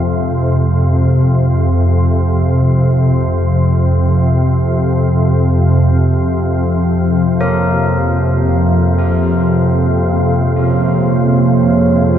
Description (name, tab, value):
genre	dark ambient drone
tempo	free time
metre	none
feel	none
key	F minor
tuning	A4 = 439 Hz
part	carillon bells	arpeggios	0.0-12.2 s	Ab2 to Bb4	-26 LUFS	left 2 dB	tape echo
part	organ-like drone	drone	0.0-12.2 s	F2 to C3	-11 LUFS	equal	ensemble chorus, built-in reverb
part	deep dark ambient pad	sustained chords	9.6-12.2 s	F3 to Db5	-16 LUFS	right 3 dB	chorus, built-in reverb
room	wet cathedral reverb, RT60 5.0 s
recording	dark, warm production, nothing above 7.9 kHz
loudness	-11 LUFS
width	side -10 dB against mid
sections	0.0-12.2 A section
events	fade-in on church bells 0.0-12.2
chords	0.0 Fm; 7.7 Bbm7/F